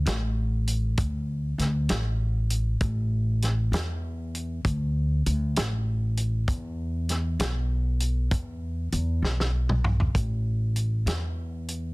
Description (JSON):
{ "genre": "slow blues", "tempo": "65 BPM (dotted quarters)", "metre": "12/8", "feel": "straight", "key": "unclear", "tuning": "A4 = 440 Hz", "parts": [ { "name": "upright bass", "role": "bass", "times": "0.0-11.9 s", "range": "A1 to E2", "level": "-25 LUFS", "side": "equal", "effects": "none" }, { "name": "warm soul drum kit", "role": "drums", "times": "0.1-11.8 s", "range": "hi-hat, kick drum, snare drum, toms", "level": "-28 LUFS", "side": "equal", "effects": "soft clipping on kick" } ], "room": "little or no reverb", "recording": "dense, heavily limited modern master", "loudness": "-24 LUFS", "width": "side -25 dB against mid", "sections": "0.0-10.1 A section; 10.1-11.9 B section", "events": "drum fill 9.2-10.1", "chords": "none", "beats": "0.06 0.98 1.90 | 2.81 3.73 4.64 5.56 | 6.48 7.40 8.31 9.23 | 10.15 11.07" }